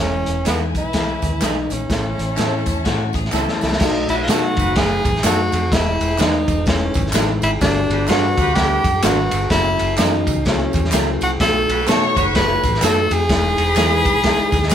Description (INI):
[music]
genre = uptempo 1960s-style soul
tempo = 127 BPM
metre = 4/4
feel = swing 61% on 8ths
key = B mixolydian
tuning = A4 = 435 Hz
[part]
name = breathy tenor saxophone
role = melody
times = 0.0-14.7 s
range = B3 to C#5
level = -20 LUFS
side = equal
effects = none
[part]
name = warm symphonic string section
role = second line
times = 0.0-3.8, 11.4-14.7 s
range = D#4 to C#6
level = -28 LUFS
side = left 3 dB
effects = none
[part]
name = tine electric piano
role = accompaniment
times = 0.0-14.7 s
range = E3 to F#5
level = -24 LUFS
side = left 5 dB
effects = none
[part]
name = vintage muted fingered electric bass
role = bass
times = 0.0-14.7 s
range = E1 to B2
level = -23 LUFS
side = equal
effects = none
[part]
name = crunchy breakbeat drum kit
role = drums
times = 0.3-14.7 s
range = crash cymbal, hi-hat, kick drum, ride cymbal, snare drum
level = -20 LUFS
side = equal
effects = none
[part]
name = electric guitar through a small old amp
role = stabs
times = 0.5-14.7 s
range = B3 to B4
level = -25 LUFS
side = right 3 dB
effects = none
[part]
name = handclaps and tambourine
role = percussion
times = 0.5-14.7 s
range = none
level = -30 LUFS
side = right 1 dB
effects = none
[part]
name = electric guitar at the edge of break-up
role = riff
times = 2.8-3.8 s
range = F#4 to A4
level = -28 LUFS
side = left 6 dB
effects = none
[part]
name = warm horn section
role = second line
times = 4.1-5.0, 7.9-12.6 s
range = B3 to B4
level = -26 LUFS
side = right 2 dB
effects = none
[sound]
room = moderate studio reverb, RT60 0.8 s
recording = band playing live in one room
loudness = -15 LUFS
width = side -9 dB against mid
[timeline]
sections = 0.0-3.8 A section; 3.8-14.7 B section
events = drum fill 3.3-3.8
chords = 0.0 E; 1.9 A; 3.8 B7; 5.7 Emaj7; 7.6 Gmaj7; 9.5 F#7; 11.4 B7; 13.3 Emaj7